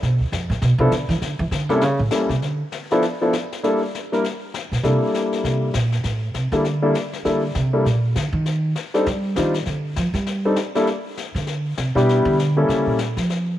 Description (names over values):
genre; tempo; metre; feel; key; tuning
jazz piano trio; 199 BPM; 4/4; swing 60% on 8ths; C mixolydian; A4 = 440 Hz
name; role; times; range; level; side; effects
upright bass; bass; 0.0-2.6, 4.7-13.6 s; D2 to G3; -21 LUFS; right 1 dB; none
brushed snare drum and snare drum; drums; 0.0-13.6 s; none; -31 LUFS; left 7 dB; none
clear concert grand piano; melody; 0.8-13.0 s; F3 to Bb4; -20 LUFS; left 1 dB; none
room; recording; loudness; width
light reverb, studio reverb; 1960s-style stereo; -18 LUFS; side -12 dB against mid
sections
0.0-3.6 A section; 3.6-13.6 A section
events
upright bass solo 0.0-13.6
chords
0.0 Dm13; 1.2 Cadd9; 1.8 A7b9; 2.4 N.C.; 3.6 C13; 8.5 F7sus2 (rootless); 10.9 Csus2; 12.1 Em7; 12.7 A7b9